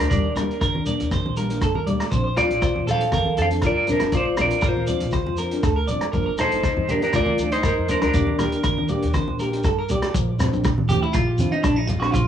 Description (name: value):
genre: highlife guitar band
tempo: 120 BPM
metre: 4/4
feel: straight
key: unclear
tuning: A4 = 440 Hz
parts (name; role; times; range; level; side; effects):
- clean electric guitar; melody; 0.0-9.6 s; D4 to F5; -22 LUFS; left 2 dB; harmonic tremolo, cassette tape
- clean electric guitar; arpeggios; 0.0-12.3 s; D4 to D5; -27 LUFS; right 4 dB; phaser, analog delay
- upright bass; bass; 0.0-12.3 s; G1 to Eb3; -26 LUFS; right 1 dB; none
- vintage drum kit; drums; 0.0-12.3 s; hi-hat, kick drum, rim click; -26 LUFS; equal; cassette tape
- nylon-string guitar; accompaniment; 0.1-12.2 s; F3 to G4; -28 LUFS; left 3 dB; none
- congas; percussion; 0.1-12.0 s; none; -28 LUFS; equal; none
- shekere; percussion; 0.1-12.3 s; none; -30 LUFS; equal; none
room: light reverb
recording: home recording on cassette, small room ambience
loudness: -19 LUFS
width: side -9 dB against mid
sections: 0.0-10.1 A section; 10.1-12.3 B section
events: clean electric guitar solo 10.1-12.3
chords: 0.1 Ebmaj7; 2.1 Bbadd9; 8.1 Ebmaj7; 10.1 Gm7 (rootless)